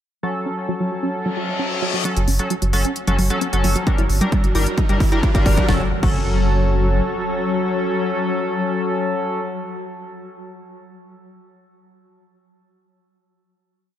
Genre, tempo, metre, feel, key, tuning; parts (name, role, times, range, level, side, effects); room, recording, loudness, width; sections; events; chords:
driving peak-time techno; 132 BPM; 4/4; straight; F# phrygian; A4 = 439 Hz
tight sequenced synth; riff; 0.2-6.2 s; F#3 to E4; -25 LUFS; equal; chorus, cassette tape, sidechain pumping, tape echo
sync-sweep polysynth; stabs; 0.2-9.4 s; F#3 to Bb4; -23 LUFS; left 2 dB; chorus, sidechain pumping, dub echo
reverse cymbal, riser and impact; sound effects; 1.3-9.1 s; -30 LUFS; left 1 dB
swarming drone; drone; 3.1-9.1 s; F#3 to F#4; -28 LUFS; left 1 dB; built-in reverb, sidechain pumping
techno drum kit; drums; 2.0-6.2 s; crash cymbal, hi-hat, snare drum; -29 LUFS; equal; overdrive, sidechain pumping on hats, sidechain pumping on cymbals
saturated sub bass; bass; 2.2-7.0 s; F#1 to G1; -20 LUFS; equal; tube saturation, sidechain pumping, low-pass filter
electronic kick drum; drums; 3.9-6.2 s; -18 LUFS; equal; overdrive
light reverb, digital ambience; echo-heavy mix; -17 LUFS; side -11 dB against mid
0.2-2.0 intro; 2.0-5.7 build; 5.7-9.3 final chord
filter sweep on synth arpeggio sound 0.2-2.0, 2.0-5.7; reverse cymbal 1.3-2.0; build-up 2.0-5.7; riser 2.0-5.7; drum fill 3.9-5.7
0.2 F#m; 3.9 Gm; 5.7 F#m